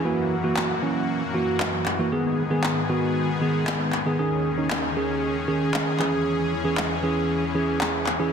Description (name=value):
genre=dance-pop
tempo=116 BPM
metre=4/4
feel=straight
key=unclear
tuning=A4 = 439 Hz
part: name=tine electric piano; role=accompaniment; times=0.0-8.3 s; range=D#3 to G#4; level=-24 LUFS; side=right 2 dB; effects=none
part: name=supersaw pad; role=sustained chords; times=0.0-8.3 s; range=D#2 to G#4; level=-28 LUFS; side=left 4 dB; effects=none
part: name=electronic handclaps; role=drums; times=0.6-8.2 s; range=none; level=-29 LUFS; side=left 1 dB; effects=none
room=moderate lush hall reverb, RT60 1.8 s, digital ambience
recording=dense, heavily limited modern master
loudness=-22 LUFS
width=side -7 dB against mid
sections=0.0-8.3 A section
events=none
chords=0.1 F#7; 2.1 G#m; 4.2 D#7sus4; 6.0 C#m/E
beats=| 0.05 0.57 1.08 1.60 | 2.12 2.64 3.15 3.67 | 4.19 4.71 5.22 5.74 | 6.26 6.77 7.29 7.81 | 8.32